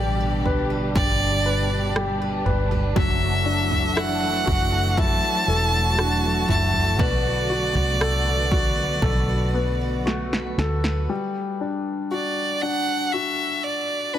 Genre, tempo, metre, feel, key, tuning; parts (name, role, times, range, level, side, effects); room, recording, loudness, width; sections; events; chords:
pop ballad; 59 BPM; 4/4; straight; G major; A4 = 440 Hz
bright violin; melody; 0.0-14.2 s; B4 to A5; -24 LUFS; right 1 dB; ping-pong delay
clear baby grand piano; accompaniment; 0.0-14.2 s; F#3 to B4; -28 LUFS; left 4 dB
dark studio string section; sustained chords; 0.0-11.1 s; B2 to G4; -29 LUFS; equal
picked steel-string acoustic guitar; arpeggios; 0.0-11.7 s; G2 to B4; -32 LUFS; right 4 dB; ping-pong delay
vintage muted fingered electric bass; bass; 0.0-11.1 s; E1 to D2; -25 LUFS; equal
punchy analog drum machine; drums; 0.5-11.1 s; kick drum, rim click, snare drum, toms; -25 LUFS; right 1 dB
studio reverb; dense, heavily limited modern master; -20 LUFS; side -11 dB against mid
0.0-11.1 A section; 11.1-14.2 B section
drum fill 10.1-11.1
0.0 G; 3.0 Dadd9/F#; 7.0 Bm7; 11.1 G5